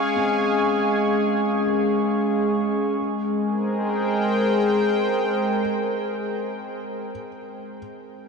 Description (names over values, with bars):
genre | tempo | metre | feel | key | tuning
ambient | 54 BPM | 3/4 | straight | Ab major | A4 = 440 Hz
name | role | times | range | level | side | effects
warm analog pad | sustained chords | 0.0-7.1 s | Ab3 to Db6 | -21 LUFS | equal | chorus
glass harmonica | texture | 0.0-3.0 s | Db4 to Db6 | -29 LUFS | left 4 dB | none
felt-muted upright piano | arpeggios | 0.2-8.3 s | C4 to Bb4 | -37 LUFS | equal | ping-pong delay
room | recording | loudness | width
wet huge ambient reverb, RT60 7.7 s | dark, warm production | -20 LUFS | side -4 dB against mid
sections
0.0-3.0 A section; 3.0-6.3 B section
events
fade-out on felt piano 0.0-3.0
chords
0.0 Db/Ab; 3.0 Abmaj9